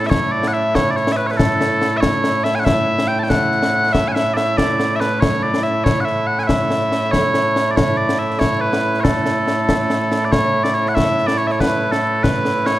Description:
scottish traditional, Scottish pipe music; 94 BPM (dotted quarters); 6/8; straight; A major; A4 = 440 Hz
mellow small bagpipes; melody; 0.0-12.8 s; A2 to A5; -16 LUFS; right 1 dB
concert snare drum and concert bass drum; drums; 0.1-12.8 s; -20 LUFS; left 1 dB
moderate scoring stage reverb, RT60 1.9 s; dark, warm production; -15 LUFS; side -15 dB against mid
0.1-10.3 A section; 10.3-12.8 B section

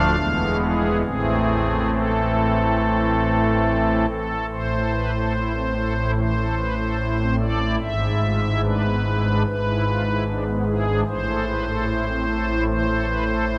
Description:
classical, chorale-style piece for pipe organ; 68-76 BPM; 4/4; rubato; A minor; A4 = 441 Hz
pipe organ, strings celeste; solo; 0.0-13.6 s; D1 to F5; -22 LUFS; equal
wet cathedral reverb, RT60 5.2 s; -22 LUFS; mono
0.0-4.5 A section; 4.5-13.6 B section
0.2 E; 1.0 Am; 7.8 E7/G#; 11.1 Am

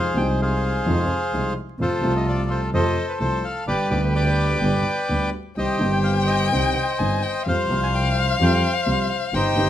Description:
tango; 128 BPM; 4/4; rubato; A4 = 442 Hz
bandoneon; melody; 0.0-9.7 s; Eb4 to Ab5; -23 LUFS; left 1 dB
dark concert grand piano; accompaniment; 0.0-9.7 s; G1 to G4; -24 LUFS; equal
warm double bass; bass; 0.0-9.7 s; G1 to F2; -25 LUFS; right 1 dB
warm violin; second line; 5.6-9.7 s; F5 to Ab5; -24 LUFS; left 5 dB
light reverb; minimal, uncompressed stereo recording, vinyl crackle; -19 LUFS; side -11 dB against mid
0.0-9.7 A section
0.0 Fm7; 1.8 F; 3.7 G; 5.6 Cm; 7.5 Fsus2

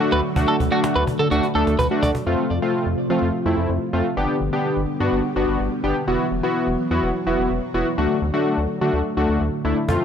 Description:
synth-pop; 126 BPM; 4/4; straight; A4 = 443 Hz
warm analog keys; accompaniment; 0.0-10.0 s; A3 to A4; -21 LUFS; left 1 dB; chorus
string machine, cellos; sustained chords; 0.0-10.0 s; C3 to G4; -26 LUFS; equal; ensemble chorus
twelve-string electric guitar; second line; 0.1-2.1 s; F#4 to D5; -24 LUFS; right 2 dB; tape echo
rubbery square bass; bass; 0.1-10.0 s; E1 to F3; -24 LUFS; equal
cajon; drums; 0.4-2.3, 9.9-10.0 s; -27 LUFS; equal
digital ambience; dry, gritty hardware recording; -18 LUFS; side -8 dB against mid
0.0-2.3 A section; 2.3-10.0 B section
drum fill 1.3-2.3
0.0 D; 2.3 F; 4.2 G; 6.1 Esus2; 8.0 D

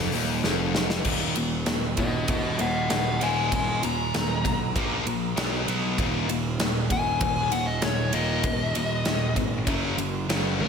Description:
hard rock; 98 BPM; 4/4; straight; Eb minor; A4 = 444 Hz
sludgy distorted guitar; riff; 0.0-10.7 s; Eb2 to B3; -31 LUFS; right 9 dB; overdrive
tight distorted guitar; riff; 0.0-10.7 s; Eb2 to B3; -30 LUFS; left 8 dB; distortion
fuzz picked electric bass; bass; 0.0-10.7 s; Eb1 to Db2; -30 LUFS; right 1 dB; overdrive
big rock drum kit; drums; 0.1-10.7 s; crash cymbal, hi-hat, kick drum, ride cymbal, snare drum, toms; -28 LUFS; right 1 dB
dark smooth lead guitar; melody; 2.0-10.7 s; Gb4 to Bb5; -28 LUFS; left 4 dB; overdrive, digital delay
moderate scoring stage reverb, RT60 1.9 s, studio reverb; big arena sound; -23 LUFS; side -6 dB against mid
0.0-1.1 A section; 1.1-10.7 B section
drum fill 0.4-1.1; lead electric guitar solo 1.1-10.7
0.0 N.C.; 1.1 Ebm; 4.8 Bb5; 5.4 B5; 6.0 Eb5; 9.7 Gb5

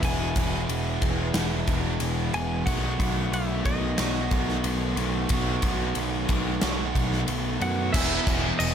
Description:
rock, shoegaze and dream pop; 91 BPM; 4/4; straight; E major; A4 = 440 Hz
direct-recorded clean electric guitar; melody; 0.0-8.7 s; D#5 to G#5; -34 LUFS; equal; digital delay
biting overdriven guitar; riff; 0.0-8.7 s; E2 to F#4; -30 LUFS; right 10 dB; reverse reverb
thick fuzz guitar; riff; 0.0-8.7 s; E2 to B3; -30 LUFS; left 10 dB; distortion, lush chorus
growling picked electric bass; bass; 0.0-8.7 s; E1 to F#2; -30 LUFS; equal; overdrive
gated 80s drum kit; drums; 0.0-8.7 s; crash cymbal, kick drum, ride cymbal, snare drum; -28 LUFS; equal
biting overdriven guitar; riff; 7.9-8.7 s; E3 to G#4; -32 LUFS; equal
tambourine; percussion; 8.3-8.7 s; -38 LUFS; right 11 dB
light reverb, studio reverb; -23 LUFS; side -8 dB against mid
0.0-7.9 A section
0.0 E; 2.7 B7; 7.9 E

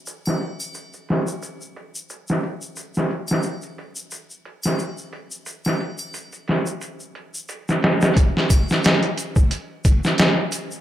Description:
trip hop; 89 BPM; 4/4; swing 55% on 16ths
trip hop sampler-style drum kit; drums; 0.1-10.7 s; hi-hat, kick drum, snare drum; -19 LUFS; equal; overdrive, low-pass filter on hats, low-pass filter on snare, low-pass filter on kick, low-pass filter on room
tube shaker and triangle; percussion; 0.1-10.8 s; -33 LUFS; left 2 dB
light reverb; dark, warm production; -19 LUFS; side -12 dB against mid
0.0-8.2 A section; 8.2-10.8 B section

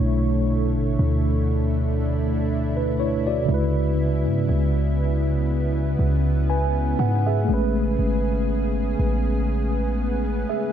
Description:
R&B; 60 BPM; 4/4; swing 54% on 16ths; B dorian; A4 = 440 Hz
mellow tine electric piano; accompaniment; 0.0-10.7 s; B2 to G#5; -24 LUFS; equal; medium stereo tremolo
lush unison pad; sustained chords; 0.0-10.7 s; C#3 to C#5; -28 LUFS; equal; chorus
warm 808-style bass; bass; 0.0-10.5 s; G#1 to G#2; -23 LUFS; equal
light reverb; dark, warm production; -20 LUFS; side -9 dB against mid
0.0-10.7 A section
0.0 Bm11; 3.5 C#m7; 7.5 Amaj9

